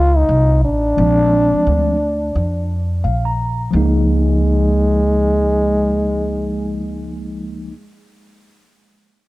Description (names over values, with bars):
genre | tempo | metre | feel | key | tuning
hip hop | 87 BPM | 4/4 | swing 61% on 16ths | Db major | A4 = 440 Hz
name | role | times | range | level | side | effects
mellow trombone | melody | 0.0-7.3 s | Ab3 to F4 | -18 LUFS | equal | analog delay
upright bass | bass | 0.0-7.7 s | A1 to F2 | -18 LUFS | equal | tube saturation
mellow tine electric piano | accompaniment | 1.0-7.7 s | F3 to Bb5 | -20 LUFS | equal | medium stereo tremolo
room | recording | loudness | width
studio reverb | dry, gritty hardware recording, cassette tape | -14 LUFS | side -18 dB against mid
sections
0.0-3.7 A section; 3.7-6.5 B section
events
tine electric piano fill 2.7-3.7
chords
0.0 N.C.; 1.0 Bb9; 3.7 Db69